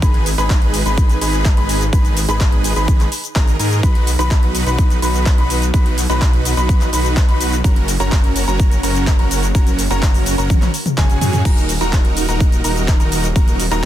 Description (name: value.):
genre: EDM, festival progressive house.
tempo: 126 BPM.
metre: 4/4.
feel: straight.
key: Eb minor.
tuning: A4 = 440 Hz.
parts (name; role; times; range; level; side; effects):
dark grand piano; arpeggios; 0.0-13.9 s; Ab5 to Cb6; -26 LUFS; left 2 dB; sidechain pumping, ping-pong delay.
dense compressed supersaw; riff; 0.0-13.9 s; Db4 to Cb5; -21 LUFS; right 1 dB; sidechain pumping, ping-pong delay.
wide detuned saw bass; bass; 0.0-13.9 s; Eb1 to Ab2; -19 LUFS; equal; chorus, sidechain pumping.
big-room dance drum kit; drums; 0.0-13.8 s; cabasa, crash cymbal, handclaps, hi-hat, toms; -23 LUFS; equal; none.
electronic kick drum; drums; 0.0-13.5 s; none; -14 LUFS; equal; none.
room: digital ambience.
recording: dense, heavily limited modern master.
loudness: -13 LUFS.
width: side -12 dB against mid.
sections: 0.0-11.5 A section; 11.5-13.9 A section.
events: drop 0.0-11.5, 11.5-13.9; drum fill 10.5-11.5.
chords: 0.0 Abm; 3.8 B; 7.6 Gb; 11.5 Ebm.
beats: | 0.02 0.50 0.98 1.45 | 1.93 2.40 2.88 3.36 | 3.83 4.31 4.79 5.26 | 5.74 6.21 6.69 7.17 | 7.64 8.12 8.60 9.07 | 9.55 10.02 10.50 10.98 | 11.45 11.93 12.40 12.88 | 13.36 13.83.